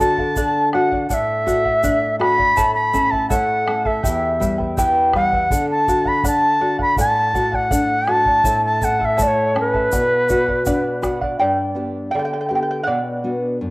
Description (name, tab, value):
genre	andean folk, Andean ensemble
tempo	82 BPM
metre	2/4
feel	straight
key	unclear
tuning	A4 = 436 Hz
part	bright reedy large quena	melody	0.0-11.0 s	B4 to B5	-17 LUFS	equal	cassette tape
part	charango	accompaniment	0.0-13.7 s	E4 to A5	-23 LUFS	right 1 dB	cassette tape
part	nylon-string guitar	accompaniment	0.0-13.7 s	E2 to G4	-23 LUFS	left 1 dB	cassette tape
part	bombo	percussion	0.0-11.4 s	none	-26 LUFS	equal	none
part	egg shaker	percussion	0.0-11.2 s	none	-32 LUFS	left 2 dB	none
room	wet spring reverb, RT60 1.8 s, small room ambience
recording	home recording on cassette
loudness	-16 LUFS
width	side -22 dB against mid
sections	0.0-11.4 A section; 11.4-13.7 B section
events	charango solo 11.4-13.7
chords	0.0 D; 2.6 A; 4.0 Em; 5.5 D; 8.5 A; 9.9 Bm; 11.4 G; 12.9 Bm